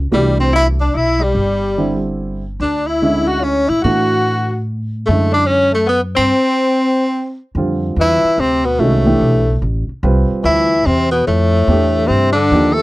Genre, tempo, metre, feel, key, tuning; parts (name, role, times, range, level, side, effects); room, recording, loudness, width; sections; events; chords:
jazz; 145 BPM; 3/4; swing 65% on 8ths; F lydian from 7.6 s; A4 = 440 Hz
upright bass; bass; 0.0-12.8 s; G1 to A2; -18 LUFS; equal
clear tenor saxophone; melody; 0.1-12.8 s; G3 to A4; -15 LUFS; equal
warm tenor saxophone; second line; 0.1-12.8 s; A2 to F#4; -21 LUFS; left 5 dB
warm baby grand piano; accompaniment; 0.1-12.8 s; D3 to B4; -18 LUFS; right 2 dB
little or no reverb; dry, close 1970s-style studio recording; -13 LUFS; side -18 dB against mid
0.0-7.6 A section; 7.6-12.8 B section
stop 6.3-7.6
0.0 Cmaj9; 2.6 Dmaj9; 6.3 N.C.; 7.6 Fmaj9